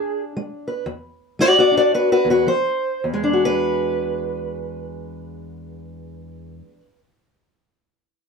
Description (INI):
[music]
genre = acoustic country blues, solo or duo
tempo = 105-120 BPM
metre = 4/4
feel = swing 61% on 8ths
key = E mixolydian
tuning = A4 = 439 Hz
[part]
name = fingerpicked steel-string acoustic guitar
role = solo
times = 0.0-7.0 s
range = E2 to D5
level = -19 LUFS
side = left 1 dB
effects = none
[sound]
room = moderate small room ambience, RT60 0.5 s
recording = dark, warm production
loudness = -17 LUFS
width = side -5 dB against mid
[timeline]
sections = 0.0-3.0 A section; 3.0-7.6 B section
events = slowing down 0.0-3.0; steel-string acoustic guitar solo 0.0-3.0; stop 0.0-2.5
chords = 0.0 E9; 2.5 N.C.; 3.0 E9